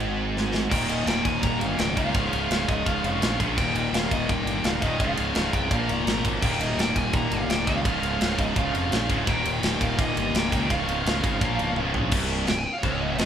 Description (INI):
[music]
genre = heavy metal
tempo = 169 BPM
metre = 4/4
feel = straight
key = unclear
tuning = A4 = 440 Hz
[part]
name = heavy high-gain guitar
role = riff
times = 0.0-13.3 s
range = C2 to Bb3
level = -30 LUFS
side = right 6 dB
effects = distortion
[part]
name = high-gain distorted guitar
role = riff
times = 0.0-13.3 s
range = C2 to Bb3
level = -29 LUFS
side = left 7 dB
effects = distortion
[part]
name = tight distorted guitar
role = riff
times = 0.0-13.3 s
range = C2 to Bb4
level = -33 LUFS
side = right 1 dB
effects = distortion
[part]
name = fuzz fingered electric bass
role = bass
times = 0.0-13.3 s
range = C1 to Db2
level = -30 LUFS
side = equal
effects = overdrive
[part]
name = tight metal drum kit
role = drums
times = 0.0-13.3 s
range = crash cymbal, kick drum, ride cymbal, snare drum, toms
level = -27 LUFS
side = equal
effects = none
[part]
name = bluesy overdriven lead guitar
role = melody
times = 0.7-13.3 s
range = C5 to Bb5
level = -30 LUFS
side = equal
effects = distortion
[sound]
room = moderate large studio reverb, RT60 0.8 s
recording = band playing live in one room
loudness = -22 LUFS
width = side -9 dB against mid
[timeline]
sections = 0.7-12.1 A section; 12.1-13.3 B section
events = drum fill 0.4-0.7, 11.8-12.1; lead electric guitar solo 12.1-13.3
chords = 0.0 N.C.; 0.7 Eb; 2.1 Db; 3.6 Eb; 5.0 Db; 5.7 Bbm; 6.4 Eb; 7.9 Db; 9.3 Eb; 10.7 Db; 11.4 Bbm; 11.8 Db; 12.1 N.C.